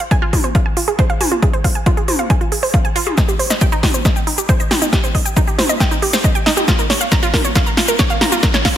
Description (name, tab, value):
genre	uplifting trance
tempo	137 BPM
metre	4/4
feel	straight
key	F minor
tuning	A4 = 439 Hz
part	wide unison pluck	arpeggios	0.0-8.7 s	Eb4 to Bb5	-19 LUFS	right 3 dB	sidechain pumping, digital delay
part	big-room dance drum kit	drums	0.0-8.7 s	hi-hat, shaker, snare drum, toms	-18 LUFS	left 1 dB	overdrive, sidechain pumping on hats, sidechain pumping on toms, sidechain pumping on perc
part	electronic kick drum	drums	0.1-8.7 s	none	-16 LUFS	equal	overdrive
room	light reverb, digital ambience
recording	none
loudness	-13 LUFS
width	side -11 dB against mid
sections	0.0-8.8 A section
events	build-up 0.0-8.8; filter sweep on synth arpeggio sound 0.0-8.8; drum fill 3.2-8.8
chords	none